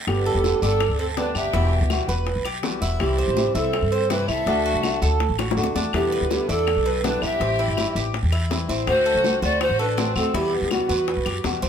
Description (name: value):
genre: latin, Cuban son and guajira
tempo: 164 BPM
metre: 4/4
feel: straight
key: G major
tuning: A4 = 440 Hz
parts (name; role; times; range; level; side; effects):
- polished pan flute; melody; 0.1-11.5 s; F#4 to E5; -23 LUFS; right 1 dB; none
- rich studio violin section; second line; 0.1-11.4 s; B3 to A4; -31 LUFS; equal; none
- flamenco guitar; accompaniment; 0.1-11.7 s; B2 to G4; -28 LUFS; left 4 dB; none
- upright bass; bass; 0.1-11.7 s; E1 to G2; -25 LUFS; equal; none
- bongos; percussion; 0.1-11.7 s; none; -30 LUFS; left 4 dB; none
- claves; percussion; 0.1-11.4 s; none; -34 LUFS; left 8 dB; none
- guiro; percussion; 0.1-11.7 s; none; -34 LUFS; right 4 dB; none
- Cuban tres; arpeggios; 0.3-11.7 s; C4 to E5; -28 LUFS; right 3 dB; none
room: light reverb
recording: minimal, uncompressed stereo recording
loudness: -19 LUFS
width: side -8 dB against mid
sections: 0.1-11.7 A section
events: drum fill 5.4-5.9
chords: 0.1 Gadd9; 1.5 Emadd9; 3.0 C; 4.5 D; 5.9 Em7; 7.4 Am7; 8.9 D7; 10.3 Emadd9